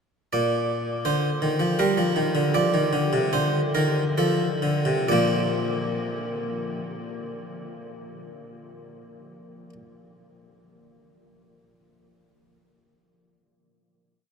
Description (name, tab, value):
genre	classical, baroque-style two-part invention for harpsichord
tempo	63-84 BPM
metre	3/4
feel	straight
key	Bb major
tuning	A4 = 440 Hz
part	harpsichord	solo	0.3-9.7 s	Bb2 to D5	-23 LUFS	equal	none
room	wet huge ambient reverb, RT60 9.0 s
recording	in a vast, echoing space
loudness	-22 LUFS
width	side -6 dB against mid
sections	0.3-5.1 exposition; 5.1-10.8 final chord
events	slowing down 0.3-6.5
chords	0.3 Bb; 1.8 Gm; 2.5 Bb; 4.2 F; 5.1 Bb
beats	| 0.33 1.05 1.79 | 2.55 3.34 4.18 | 5.10 6.05 7.00 | 7.94 8.88